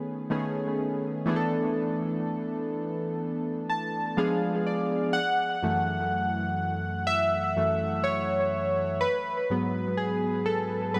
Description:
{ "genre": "R&B", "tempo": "62 BPM", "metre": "4/4", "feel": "swing 58% on 16ths", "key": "F# minor", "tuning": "A4 = 441 Hz", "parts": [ { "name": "warm analog keys", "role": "solo", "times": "0.0-11.0 s", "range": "F#2 to A5", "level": "-28 LUFS", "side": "equal", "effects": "chorus, analog delay" } ], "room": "moderate plate reverb, RT60 3.2 s", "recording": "echo-heavy mix", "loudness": "-28 LUFS", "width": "mono", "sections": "0.0-5.1 A section; 5.1-11.0 B section", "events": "synth keys fill 3.2-5.1; synth keys solo 5.1-11.0", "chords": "0.0 B13; 1.3 E7sus4; 4.2 Fdim7; 5.1 F#m7; 9.0 G#m7" }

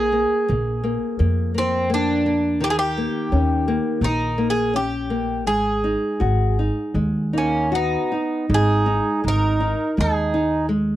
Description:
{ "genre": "fado-style ballad", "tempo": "74-86 BPM", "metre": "4/4", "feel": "rubato", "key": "G# minor", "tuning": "A4 = 440 Hz", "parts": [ { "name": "Greek bouzouki", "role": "melody", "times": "0.0-10.7 s", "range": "B#3 to A#4", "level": "-23 LUFS", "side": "right 1 dB", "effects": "none" }, { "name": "nylon-string guitar", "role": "accompaniment", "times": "0.0-11.0 s", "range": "D#3 to F#4", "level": "-24 LUFS", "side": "left 2 dB", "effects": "none" }, { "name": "upright bass", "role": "bass", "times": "0.0-11.0 s", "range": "G#1 to E#2", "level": "-23 LUFS", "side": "equal", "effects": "tube saturation" }, { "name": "mellow accordion", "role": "second line", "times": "7.3-10.7 s", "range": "A#3 to D#4", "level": "-24 LUFS", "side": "right 4 dB", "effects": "none" } ], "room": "light reverb", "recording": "dry, close 1970s-style studio recording", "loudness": "-18 LUFS", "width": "side -14 dB against mid", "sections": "0.0-8.5 A section; 8.5-11.0 A section", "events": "none", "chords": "0.0 A#7; 2.6 D#7; 5.5 G#m7; 8.5 G#5" }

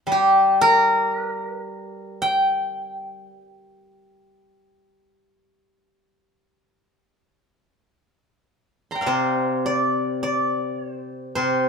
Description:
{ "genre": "chinese traditional, Chinese solo plucked strings", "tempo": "48-59 BPM", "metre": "4/4", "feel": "rubato", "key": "G yu mode", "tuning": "A4 = 436 Hz", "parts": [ { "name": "steel-string zither", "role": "solo", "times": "0.1-11.7 s", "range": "C3 to C6", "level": "-19 LUFS", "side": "equal", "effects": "none" } ], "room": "light reverb", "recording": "minimal, uncompressed stereo recording", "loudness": "-19 LUFS", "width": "side -6 dB against mid", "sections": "0.0-9.1 A section; 9.1-11.7 B section", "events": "none", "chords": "none" }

